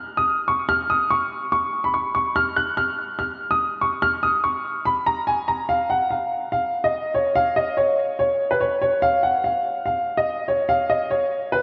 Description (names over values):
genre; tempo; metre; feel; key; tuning
hip hop; 144 BPM; 4/4; half-time; unclear; A4 = 440 Hz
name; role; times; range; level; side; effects
dark baby grand piano; solo; 0.0-11.6 s; Cb5 to Gb6; -22 LUFS; equal; low-pass filter
room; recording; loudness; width
wet lush hall reverb, RT60 3.0 s; dreamy mix soaked in reverb; -22 LUFS; mono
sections
0.0-5.7 A section; 5.7-11.6 B section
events
none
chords
none